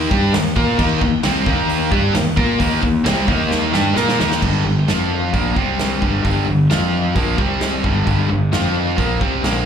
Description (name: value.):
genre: hard rock.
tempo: 132 BPM.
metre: 4/4.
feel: straight.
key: unclear.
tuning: A4 = 444 Hz.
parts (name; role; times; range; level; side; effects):
overdriven semi-hollow guitar; riff; 0.0-9.7 s; G2 to Bb4; -21 LUFS; left 8 dB; tremolo, slapback echo.
sludgy distorted guitar; riff; 0.0-4.4 s; C3 to Bb4; -23 LUFS; equal; overdrive.
tight distorted guitar; riff; 0.0-9.7 s; G2 to Bb4; -21 LUFS; right 10 dB; distortion, slapback echo.
fuzz fingered electric bass; bass; 0.0-9.7 s; G1 to Bb2; -20 LUFS; right 1 dB; overdrive.
big rock drum kit; drums; 0.1-9.5 s; crash cymbal, hi-hat, kick drum, snare drum; -22 LUFS; right 1 dB; none.
room: small room ambience.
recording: live gig heard through the venue's PA, club reverb.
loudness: -15 LUFS.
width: side -8 dB against mid.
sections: 0.0-4.4 A section; 4.4-9.7 B section.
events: drum fill 3.5-4.4.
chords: 0.0 Eb5; 4.4 G5; 4.9 F5; 5.3 Bb5; 5.6 C5; 6.0 G5; 6.7 F5; 7.2 Bb5; 7.4 C5; 7.8 G5; 8.5 F5; 9.0 Gm.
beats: 0.34 | 0.79 1.24 1.69 2.15 | 2.60 3.05 3.51 3.96 | 4.42 4.87 5.33 5.79 | 6.24 6.70 7.16 7.61 | 8.07 8.53 8.98 9.44.